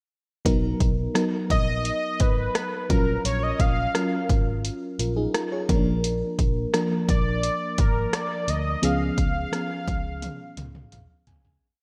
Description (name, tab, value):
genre	1980s-style pop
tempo	86 BPM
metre	4/4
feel	straight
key	unclear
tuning	A4 = 440 Hz
part	FM electric piano with tremolo	accompaniment	0.4-11.6 s	E#3 to G#5	-30 LUFS	equal	slapback echo
part	vintage muted picked electric bass	bass	0.5-11.6 s	G#1 to D2	-30 LUFS	equal	none
part	80s electronic pad drums	drums	0.5-11.6 s	hi-hat, kick drum, rim click, toms	-28 LUFS	equal	none
part	unison lead	melody	1.5-10.9 s	A#4 to E#5	-30 LUFS	equal	none
room	moderate lush hall reverb, RT60 1.7 s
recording	big arena sound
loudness	-24 LUFS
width	mono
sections	0.5-11.6 verse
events	fade-out 8.8-11.6; drum fill 10.2-11.6; FM electric piano fill 10.6-11.6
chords	0.5 Bmaj7; 2.9 F#maj7/A#; 5.7 A#; 8.8 C#7